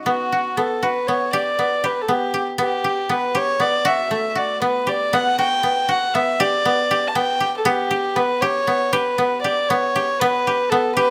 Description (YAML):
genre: contemporary instrumental, contemporary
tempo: 237 BPM (eighths)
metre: 5/8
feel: straight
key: G lydian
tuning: A4 = 440 Hz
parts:
  - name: koto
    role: arpeggios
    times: 0.0-11.1 s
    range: A3 to A4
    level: -23 LUFS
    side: equal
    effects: none
  - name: dark violin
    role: melody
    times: 0.1-11.1 s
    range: F#4 to A5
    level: -22 LUFS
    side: equal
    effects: none
room: light reverb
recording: close, detailed microphones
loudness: -20 LUFS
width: mono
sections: 0.1-10.2 A section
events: none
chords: 0.1 Gmaj7; 2.6 G/B; 3.9 B5; 7.7 G/B